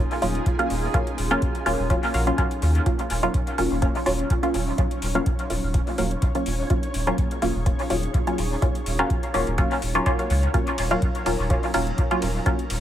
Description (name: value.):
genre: dub techno.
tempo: 125 BPM.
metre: 4/4.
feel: swing 54% on 16ths.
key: Eb minor.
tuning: A4 = 439 Hz.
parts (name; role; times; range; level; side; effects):
warbly tape-like pad; sustained chords; 0.0-12.8 s; Gb3 to Ab4; -34 LUFS; equal; chorus, built-in reverb, sidechain pumping.
filtered dub chord stab; stabs; 0.0-12.6 s; Gb3 to F4; -25 LUFS; equal; chorus, phaser, sidechain pumping, dub echo.
soft dub sub bass; bass; 0.0-12.8 s; Eb1 to Eb2; -26 LUFS; equal; sidechain pumping.
flickering grainy texture; texture; 0.0-12.8 s; Bb3 to Db5; -37 LUFS; equal; built-in reverb, sidechain pumping.
deep house drum kit; drums; 0.1-12.8 s; hi-hat, ride cymbal; -36 LUFS; left 2 dB; overdrive, small room reverb.
electronic kick drum; drums; 0.5-12.6 s; none; -24 LUFS; equal; small room reverb.
filtered dub chord stab; riff; 2.1-11.0 s; Gb4 to F5; -34 LUFS; left 1 dB; chorus, sidechain pumping, dub echo.
room: light reverb.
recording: echo-heavy mix.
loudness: -21 LUFS.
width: side -11 dB against mid.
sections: 0.0-12.8 A section.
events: none.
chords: 0.0 Ebm9.